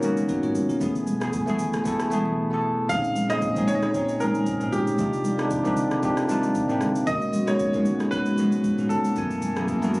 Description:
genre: amapiano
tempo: 115 BPM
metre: 4/4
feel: swing 55% on 16ths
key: unclear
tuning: A4 = 441 Hz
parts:
  - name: barky tine electric piano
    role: accompaniment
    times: 0.0-10.0 s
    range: Gb2 to Ab5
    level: -24 LUFS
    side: equal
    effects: phaser
  - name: hollow soft pad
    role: sustained chords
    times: 0.0-10.0 s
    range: C2 to Ab5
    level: -31 LUFS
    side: equal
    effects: chorus, sidechain pumping
  - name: punchy sub bass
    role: bass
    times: 0.0-2.9 s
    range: Gb1 to Ab1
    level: -39 LUFS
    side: equal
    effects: none
  - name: smooth R&B drum kit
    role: drums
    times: 0.0-10.0 s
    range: kick drum, rim click, shaker, toms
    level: -34 LUFS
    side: equal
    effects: none
  - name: congas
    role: percussion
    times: 0.0-10.0 s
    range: none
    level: -31 LUFS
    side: equal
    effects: none
  - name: clear grand piano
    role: melody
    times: 2.9-10.0 s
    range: G4 to F5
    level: -28 LUFS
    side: equal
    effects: ping-pong delay
  - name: swell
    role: sound effects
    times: 9.3-10.0 s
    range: none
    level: -34 LUFS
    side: equal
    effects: none
room: light reverb, digital ambience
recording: recorded on a phone in the room, club reverb, compression, nothing above 11.0 kHz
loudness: -21 LUFS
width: side -23 dB against mid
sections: 0.0-10.0 A section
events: silent gap 2.4-2.9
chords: 0.0 Abm11; 0.8 Gbm11; 2.9 Bbm11; 5.0 Cm11; 7.1 Abm11; 9.2 Gbm11

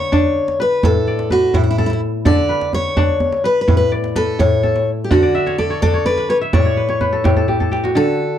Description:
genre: west african traditional, West African string and xylophone music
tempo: 84 BPM (dotted quarters)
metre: 12/8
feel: straight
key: D major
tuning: A4 = 440 Hz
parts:
  - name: picked steel-string acoustic guitar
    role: melody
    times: 0.0-8.4 s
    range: E4 to D5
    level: -17 LUFS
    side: left 1 dB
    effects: none
  - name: kora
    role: arpeggios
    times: 0.0-8.4 s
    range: A2 to F#5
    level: -18 LUFS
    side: left 1 dB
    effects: none
  - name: djembe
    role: percussion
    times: 0.0-8.0 s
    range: none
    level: -19 LUFS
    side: right 1 dB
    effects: none
room: moderate small room reverb, RT60 0.5 s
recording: worn, warbling old tape, cassette tape, warbly pitch drift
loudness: -14 LUFS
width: side -10 dB against mid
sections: 0.0-8.0 A section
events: kora fill 5.1-8.0; drum fill 7.4-8.0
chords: 0.0 D5; 0.8 Asus24; 2.3 D5; 3.7 A; 5.1 D; 6.5 N.C.

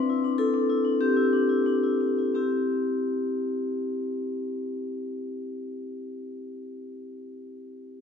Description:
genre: classical, contemporary piece for solo vibraphone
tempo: 82-103 BPM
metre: 4/4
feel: rubato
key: C major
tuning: A4 = 440 Hz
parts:
  - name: vibraphone with medium mallets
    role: solo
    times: 0.0-8.0 s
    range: C4 to B4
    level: -25 LUFS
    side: left 2 dB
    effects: none
room: wet stone room reverb, RT60 1.3 s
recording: heard from further back in the room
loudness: -24 LUFS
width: side -6 dB against mid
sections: 0.0-2.4 A section; 2.4-7.9 B section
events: slowing down 0.0-2.4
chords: 0.0 Cadd9; 2.4 C

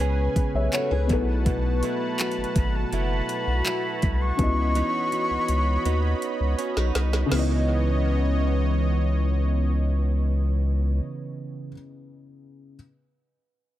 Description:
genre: contemporary R&B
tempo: 82 BPM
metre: 4/4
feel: straight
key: C# minor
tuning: A4 = 438 Hz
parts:
  - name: felt-muted upright piano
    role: accompaniment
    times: 0.0-12.8 s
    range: B2 to E5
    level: -31 LUFS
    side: left 4 dB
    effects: none
  - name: warm analog pad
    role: sustained chords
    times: 0.0-11.0 s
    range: E3 to B5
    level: -31 LUFS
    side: left 1 dB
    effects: chorus
  - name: direct-recorded clean electric guitar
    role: arpeggios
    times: 0.0-11.8 s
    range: B2 to G#4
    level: -32 LUFS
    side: right 9 dB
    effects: dub echo
  - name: round analog bass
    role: bass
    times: 0.0-11.0 s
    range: F#1 to D#2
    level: -23 LUFS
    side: equal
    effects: none
  - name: trap drum kit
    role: drums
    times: 0.0-7.5 s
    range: crash cymbal, handclaps, hi-hat, kick drum, snare drum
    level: -27 LUFS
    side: equal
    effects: overdrive
  - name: jazz flute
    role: melody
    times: 1.8-6.6 s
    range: A5 to C#6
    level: -30 LUFS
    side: left 1 dB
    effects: dub echo
room: light reverb, digital ambience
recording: echo-heavy mix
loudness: -22 LUFS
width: side -13 dB against mid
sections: 0.0-7.3 A section; 7.3-10.2 B section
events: drum fill 4.4-7.3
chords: 0.0 B13sus4; 1.1 B7sus4; 4.4 C#m9

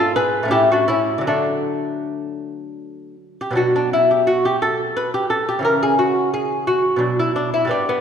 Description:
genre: classical, baroque-style dance for lute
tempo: 76-88 BPM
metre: 3/4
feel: rubato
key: D major, B minor from 3.6 s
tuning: A4 = 440 Hz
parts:
  - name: lute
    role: solo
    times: 0.0-8.0 s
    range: G2 to B4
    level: -17 LUFS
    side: equal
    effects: none
room: wet scoring stage reverb, RT60 1.6 s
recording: recorded in a church or concert hall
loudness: -16 LUFS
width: side -8 dB against mid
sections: 0.0-3.6 A section; 3.6-8.0 A section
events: none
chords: 0.0 G#m6; 0.5 A; 1.3 D; 3.6 Bm; 5.6 C#madd11; 7.0 Bm

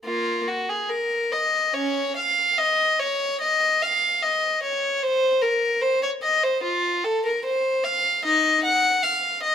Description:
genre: classical, baroque-style suite movement for unaccompanied violin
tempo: 74 BPM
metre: 4/4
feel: rubato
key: unclear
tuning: A4 = 440 Hz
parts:
  - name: warm violin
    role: solo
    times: 0.0-9.5 s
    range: Bb3 to Gb5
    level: -20 LUFS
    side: left 1 dB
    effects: none
room: moderate large studio reverb, RT60 1.4 s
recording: minimal, uncompressed stereo recording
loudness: -20 LUFS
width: side -8 dB against mid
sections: 0.1-9.5 A section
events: none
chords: none

